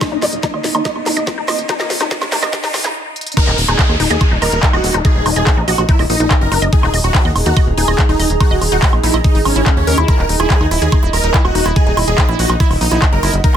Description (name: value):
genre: psychedelic trance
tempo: 143 BPM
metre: 4/4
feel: straight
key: Eb phrygian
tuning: A4 = 440 Hz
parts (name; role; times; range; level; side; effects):
- pulsing gated texture; sustained chords; 0.0-13.6 s; Eb4 to Ab5; -24 LUFS; right 1 dB; chorus, built-in reverb, sidechain pumping
- electronic kick drum; drums; 0.0-13.5 s; none; -13 LUFS; equal; overdrive
- techno drum kit; drums; 0.0-13.6 s; crash cymbal, handclaps, hi-hat, snare drum, woodblock; -19 LUFS; right 1 dB; overdrive
- riser and downlifter; sound effects; 0.0-6.7 s; none; -24 LUFS; equal; none
- granular cloud pad; texture; 0.0-13.6 s; Bb3 to Bb5; -30 LUFS; right 2 dB; none
- woody wave-folded pluck; riff; 0.1-13.6 s; Db4 to Eb5; -21 LUFS; moving between left 5 dB and right 2 dB; chorus, auto-pan, sidechain pumping, ping-pong delay
- plucky analog bass; bass; 0.1-13.6 s; Eb1 to Eb2; -18 LUFS; equal; none
- metallic wobble bass; second line; 1.8-2.5 s; Bb3; -34 LUFS; left 3 dB; none
- dense compressed supersaw; melody; 3.4-13.6 s; Db4 to Bb4; -20 LUFS; right 1 dB; phaser, sidechain pumping, ping-pong delay
room: digital ambience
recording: high-pass filter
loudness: -12 LUFS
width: side -9 dB against mid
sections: 0.0-3.4 A section; 3.4-13.6 B section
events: build-up 0.0-3.4; drum fill 0.0-3.0, 3.2; riser 0.0-3.0; filter sweep on synth arpeggio sound 0.0-3.4; filter sweep 0.0-3.4; stop 3.0-3.4; drop 3.4-13.6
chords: 0.0 Eb5